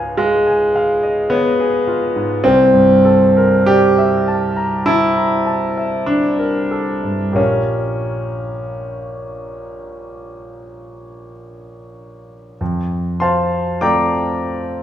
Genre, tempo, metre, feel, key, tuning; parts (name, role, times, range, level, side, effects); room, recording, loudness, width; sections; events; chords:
classical, impressionist solo piano; 44-54 BPM; 4/4; rubato; F major; A4 = 440 Hz
clear concert grand piano; solo; 0.0-14.8 s; Bb1 to D6; -14 LUFS; equal
wet recital hall reverb, RT60 1.6 s; small room ambience; -13 LUFS; side -10 dB against mid
0.0-12.6 A section; 12.6-14.8 B section
0.0 Db9; 2.4 C13; 7.4 Bbm6; 12.6 F